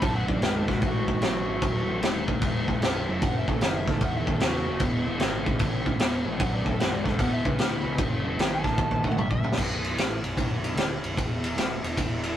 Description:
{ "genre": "blues rock power trio and southern rock", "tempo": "151 BPM", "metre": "4/4", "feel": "swing 66% on 8ths", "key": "B mixolydian", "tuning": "A4 = 439 Hz", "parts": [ { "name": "overdriven slide guitar", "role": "melody", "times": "0.0-9.6 s", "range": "E4 to A5", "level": "-32 LUFS", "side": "equal", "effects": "none" }, { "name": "overdriven semi-hollow guitar", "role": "riff", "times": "0.0-12.4 s", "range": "B1 to D#3", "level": "-31 LUFS", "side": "equal", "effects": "none" }, { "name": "fuzz picked electric bass", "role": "bass", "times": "0.0-12.3 s", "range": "B0 to E2", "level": "-34 LUFS", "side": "equal", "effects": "overdrive" }, { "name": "vintage drum kit", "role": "drums", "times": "0.0-12.3 s", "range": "crash cymbal, kick drum, ride cymbal, snare drum, toms", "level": "-25 LUFS", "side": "equal", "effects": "none" } ], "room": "light reverb", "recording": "rough rehearsal-room recording, tube saturation", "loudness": "-24 LUFS", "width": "side -11 dB against mid", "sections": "0.0-9.6 A section; 9.6-12.4 B section", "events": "electric slide guitar solo 0.0-9.6; drum fill 8.8-9.6", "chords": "0.0 B7; 3.2 F#7(no3); 4.8 E; 6.4 B; 7.2 E5; 8.0 F#7#9; 9.6 Bm7; 11.2 E7(no3)" }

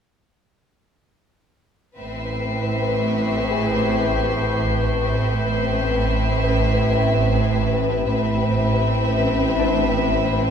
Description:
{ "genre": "cinematic", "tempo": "79 BPM", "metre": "4/4", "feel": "straight", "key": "A harmonic minor", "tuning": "A4 = 437 Hz", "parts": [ { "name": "warm symphonic violin section", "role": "melody", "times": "2.0-10.5 s", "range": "E5", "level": "-27 LUFS", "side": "left 4 dB", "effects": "none" }, { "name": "warm symphonic violin section", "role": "second line", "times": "2.0-10.5 s", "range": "C4 to B4", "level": "-25 LUFS", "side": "left 2 dB", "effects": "none" }, { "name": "glass harmonica", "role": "sustained chords", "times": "2.0-10.5 s", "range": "C4 to B5", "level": "-27 LUFS", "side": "left 2 dB", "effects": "none" }, { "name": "clear symphonic double bass section", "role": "bass", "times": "2.0-10.5 s", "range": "A1", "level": "-25 LUFS", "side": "right 3 dB", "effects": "none" }, { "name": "rich symphonic cello section", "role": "bass", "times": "2.0-10.5 s", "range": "A2", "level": "-25 LUFS", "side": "right 4 dB", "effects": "none" }, { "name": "swarming drone", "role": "drone", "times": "2.9-10.5 s", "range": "A1", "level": "-26 LUFS", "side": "equal", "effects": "built-in reverb" }, { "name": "rich symphonic violin section", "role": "texture", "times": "2.0-7.6 s", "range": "C#6 to C7", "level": "-31 LUFS", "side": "left 3 dB", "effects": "none" }, { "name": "concert harp", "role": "texture", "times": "3.5-10.5 s", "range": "D4 to G#5", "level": "-30 LUFS", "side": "left 4 dB", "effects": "none" } ], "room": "wet recital hall reverb, RT60 1.7 s", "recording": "recorded in a church or concert hall", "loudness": "-18 LUFS", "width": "side -7 dB against mid", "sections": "2.0-10.5 A section", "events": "none", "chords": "2.0 Amadd9" }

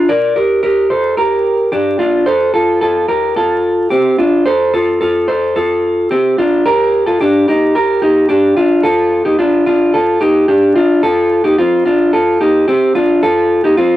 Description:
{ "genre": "indie pop", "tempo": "110 BPM", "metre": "4/4", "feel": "straight", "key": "unclear", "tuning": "A4 = 440 Hz", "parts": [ { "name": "electric guitar through a small old amp", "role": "solo", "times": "0.0-14.0 s", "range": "C4 to D5", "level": "-10 LUFS", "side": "equal", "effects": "cassette tape" } ], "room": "wet booth ambience, RT60 0.2 s", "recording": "home recording on cassette, vinyl crackle", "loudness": "-10 LUFS", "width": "side -14 dB against mid", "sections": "0.0-6.7 A section; 6.7-14.0 B section", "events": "none", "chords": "0.0 Gm; 2.3 F; 6.7 Gm; 8.8 Dm; 11.0 F" }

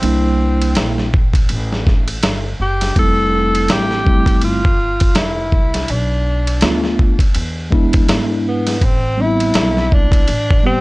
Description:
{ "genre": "hip hop, jazz-hop", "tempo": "82 BPM", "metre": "4/4", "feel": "swing 58% on 16ths", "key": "C major", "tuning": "A4 = 435 Hz", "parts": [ { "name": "breathy tenor saxophone", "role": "melody", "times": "0.0-10.8 s", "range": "B3 to A4", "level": "-20 LUFS", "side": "equal", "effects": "tape echo" }, { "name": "mellow tine electric piano", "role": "accompaniment", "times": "0.0-10.8 s", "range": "G3 to G4", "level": "-18 LUFS", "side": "equal", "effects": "medium stereo tremolo" }, { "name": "upright bass", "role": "bass", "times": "0.0-10.8 s", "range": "F1 to G#2", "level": "-20 LUFS", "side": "equal", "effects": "none" }, { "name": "dusty soul sampler-style drum kit", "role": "drums", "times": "0.0-10.6 s", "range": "hi-hat, kick drum, ride cymbal, snare drum", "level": "-16 LUFS", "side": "equal", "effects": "vintage 12-bit sampler grit" } ], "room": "little or no reverb", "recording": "dry, gritty hardware recording", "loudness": "-13 LUFS", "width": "side -22 dB against mid", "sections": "0.0-10.8 A section", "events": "none", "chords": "0.0 C7; 3.0 Fmaj7; 5.9 Bm7b5; 7.4 E7; 8.8 Am7" }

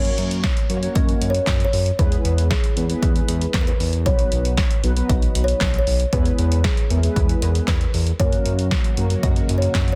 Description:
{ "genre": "synth-pop", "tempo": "116 BPM", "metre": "4/4", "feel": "straight", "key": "unclear", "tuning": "A4 = 440 Hz", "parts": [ { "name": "kalimba", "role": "melody", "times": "0.0-10.0 s", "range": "G#4 to D#5", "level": "-30 LUFS", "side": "equal", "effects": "digital delay" }, { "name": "mellow synth brass", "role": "accompaniment", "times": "0.0-9.8 s", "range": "F#3 to C#5", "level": "-30 LUFS", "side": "equal", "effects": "chorus" }, { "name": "smooth synth bass", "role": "bass", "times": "0.0-9.9 s", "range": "B1 to F#2", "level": "-23 LUFS", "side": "equal", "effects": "none" }, { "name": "punchy analog drum machine", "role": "drums", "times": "0.0-10.0 s", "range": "handclaps, hi-hat, kick drum, snare drum", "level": "-23 LUFS", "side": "equal", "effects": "none" }, { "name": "string machine, cellos", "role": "sustained chords", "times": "8.2-10.0 s", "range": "C#3 to F#4", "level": "-34 LUFS", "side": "equal", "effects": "phaser, ensemble chorus" } ], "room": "little or no reverb", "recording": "dense, heavily limited modern master", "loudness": "-20 LUFS", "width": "mono", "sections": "0.0-10.0 A section", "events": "none", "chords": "0.0 F#; 2.0 E; 4.1 B; 6.1 E; 8.2 F#" }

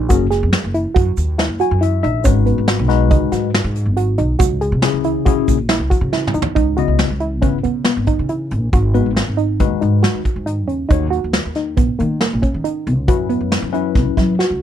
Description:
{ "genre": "progressive instrumental, band music in an uneven meter", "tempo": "138 BPM", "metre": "5/4", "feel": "straight", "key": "C# dorian", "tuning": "A4 = 436 Hz", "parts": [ { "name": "soft round pluck", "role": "arpeggios", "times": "0.0-14.6 s", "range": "A#3 to G#4", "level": "-21 LUFS", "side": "right 3 dB", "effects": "chorus" }, { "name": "upright bass", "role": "bass", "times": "0.0-14.6 s", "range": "F#1 to F#3", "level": "-19 LUFS", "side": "equal", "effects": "none" }, { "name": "tine electric piano", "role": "accompaniment", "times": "0.1-14.3 s", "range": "C#3 to G#5", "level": "-20 LUFS", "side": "left 17 dB", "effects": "overdrive, phaser" }, { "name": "soft brush drum kit", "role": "drums", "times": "0.1-14.5 s", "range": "hi-hat, kick drum, snare drum, toms", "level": "-18 LUFS", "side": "equal", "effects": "none" }, { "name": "egg shaker", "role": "percussion", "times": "0.1-6.5 s", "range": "none", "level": "-34 LUFS", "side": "right 25 dB", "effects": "none" } ], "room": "little or no reverb", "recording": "none", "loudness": "-14 LUFS", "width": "side -10 dB against mid", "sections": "0.0-6.6 A section; 6.6-14.6 B section", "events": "tine electric piano fill 1.4-2.3; drum fill 6.1-6.6, 14.4", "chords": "0.1 F#add9; 2.3 G#m7; 4.4 C#m; 6.6 C#m9; 8.7 G#m7; 10.9 D#m7; 13.1 F#7sus4" }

